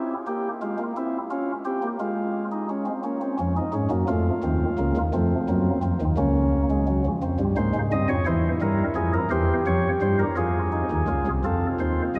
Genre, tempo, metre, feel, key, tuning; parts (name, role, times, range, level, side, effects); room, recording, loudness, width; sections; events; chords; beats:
classical, baroque-style 4-part fugue for pipe organ; 57 BPM (dotted quarters); 6/8; straight; A4 = 440 Hz
chamber organ, flutes; solo; 0.0-12.2 s; C2 to Eb5; -24 LUFS; equal
wet cathedral reverb, RT60 6.1 s; dark, warm production; -24 LUFS; mono
0.0-11.4 A section
0.0 C; 1.0 C7; 2.0 Fm/Ab; 3.0 Bbm; 4.1 F; 5.1 F7; 6.2 Bbm/Db; 7.2 Fm; 8.3 C/E; 9.3 C7/E; 10.4 Fm; 11.4 F7
| 0.96 2.00 | 3.04 4.08 | 5.13 6.18 | 7.23 8.28 | 9.33 10.39 | 11.44